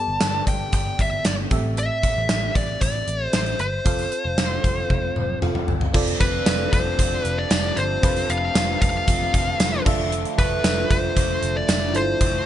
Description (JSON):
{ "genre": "1980s-style pop", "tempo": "115 BPM", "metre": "4/4", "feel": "straight", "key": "unclear", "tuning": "A4 = 438 Hz", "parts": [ { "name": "fuzz lead guitar", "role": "melody", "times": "0.0-12.5 s", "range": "B4 to A5", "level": "-25 LUFS", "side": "left 1 dB", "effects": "distortion, ping-pong delay, plate reverb" }, { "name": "FM electric piano", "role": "accompaniment", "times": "0.0-12.5 s", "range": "G2 to F5", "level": "-29 LUFS", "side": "right 2 dB", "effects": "chorus, phaser, plate reverb" }, { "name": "vintage muted picked electric bass", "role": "bass", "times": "0.1-12.4 s", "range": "F1 to A1", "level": "-27 LUFS", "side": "equal", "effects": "none" }, { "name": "gated 80s drum kit", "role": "drums", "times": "0.2-12.3 s", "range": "crash cymbal, hi-hat, kick drum, snare drum, tambourine, toms", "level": "-22 LUFS", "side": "equal", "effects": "gated reverb" }, { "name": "biting overdriven guitar", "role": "accompaniment", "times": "5.9-12.5 s", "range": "D3 to F4", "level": "-33 LUFS", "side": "left 1 dB", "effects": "analog chorus" }, { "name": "dark French horn section", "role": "sustained chords", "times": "5.9-12.5 s", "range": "C3 to E5", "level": "-32 LUFS", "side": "equal", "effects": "plate reverb" } ], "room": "light reverb", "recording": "nothing above 10.9 kHz", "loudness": "-19 LUFS", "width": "side -11 dB against mid", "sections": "0.0-5.9 A section; 5.9-12.5 B section", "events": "drum fill 4.9-5.9", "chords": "0.0 Gadd9; 1.5 Am7; 3.9 F; 5.9 F6; 9.9 Dmadd9/F" }